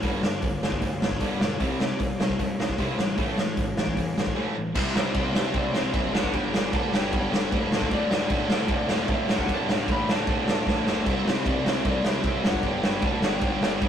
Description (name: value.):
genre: punk rock.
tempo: 152 BPM.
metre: 4/4.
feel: straight.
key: unclear.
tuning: A4 = 440 Hz.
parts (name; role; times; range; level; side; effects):
crunchy overdriven guitar; riff; 0.0-13.9 s; D2 to C4; -30 LUFS; left 4 dB; none.
distorted electric guitar; riff; 0.0-13.9 s; D2 to C4; -32 LUFS; right 5 dB; overdrive.
fuzz picked electric bass; bass; 0.0-13.9 s; D1 to C3; -33 LUFS; equal; overdrive.
raw garage drum kit; drums; 0.0-13.9 s; crash cymbal, hi-hat, kick drum, snare drum; -25 LUFS; equal; none.
lightly driven lead guitar; melody; 4.8-13.9 s; C5 to B5; -33 LUFS; equal; none.
room: light reverb.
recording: rough rehearsal-room recording, tube saturation.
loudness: -22 LUFS.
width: side -9 dB against mid.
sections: 0.0-4.8 A section; 4.8-13.9 B section.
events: break 4.4-4.8; drum fill 10.7-11.1.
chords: 0.0 G5; 1.6 C5; 3.2 A5; 4.8 C5; 6.1 G5; 7.7 D5; 11.1 C5; 12.4 G5.